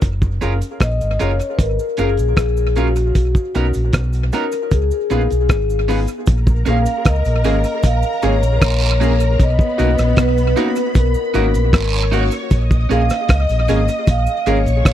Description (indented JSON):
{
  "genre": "lovers rock reggae",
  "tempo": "77 BPM",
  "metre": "4/4",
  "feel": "straight",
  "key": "unclear",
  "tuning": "A4 = 440 Hz",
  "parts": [
    { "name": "fingered electric bass", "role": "bass", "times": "0.0-14.9 s", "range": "F#1 to C#2", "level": "-17 LUFS", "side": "equal", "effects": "none" },
    { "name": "cloth-damped thuddy drum kit", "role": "drums", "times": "0.0-14.9 s", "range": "hi-hat, kick drum, rim click", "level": "-16 LUFS", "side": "equal", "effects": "tape echo" },
    { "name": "cabasa and guiro", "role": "percussion", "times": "0.0-14.9 s", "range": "none", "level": "-30 LUFS", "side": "right 7 dB", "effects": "tape echo" },
    { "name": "warm baby grand piano", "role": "accompaniment", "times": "0.4-14.6 s", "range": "A#3 to A#4", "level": "-25 LUFS", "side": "left 2 dB", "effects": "tape echo" },
    { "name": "electric guitar at the edge of break-up", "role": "stabs", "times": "0.4-14.6 s", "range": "B3 to B4", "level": "-24 LUFS", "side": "right 7 dB", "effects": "lush chorus" },
    { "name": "vibraphone with soft mallets", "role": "melody", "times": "0.8-14.9 s", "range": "F#4 to E#5", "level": "-21 LUFS", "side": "left 2 dB", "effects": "tape echo" },
    { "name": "string machine, violins", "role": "second line", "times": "6.3-14.9 s", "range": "B3 to D#6", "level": "-24 LUFS", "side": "left 2 dB", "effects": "ensemble chorus" }
  ],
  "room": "small room ambience",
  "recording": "dry, close 1970s-style studio recording",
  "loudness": "-14 LUFS",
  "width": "side -11 dB against mid",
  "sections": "0.0-6.3 A section; 6.3-14.9 B section",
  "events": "none",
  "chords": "0.0 F#maj7; 3.1 Bmaj7; 4.7 C#7; 6.3 A#m7; 9.4 Bmaj7; 12.5 A#m7",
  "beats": "| 0.02 0.80 1.59 2.37 | 3.15 3.93 4.71 5.49 | 6.27 7.05 7.83 8.61 | 9.39 10.17 10.95 11.73 | 12.51 13.29 14.07 14.85"
}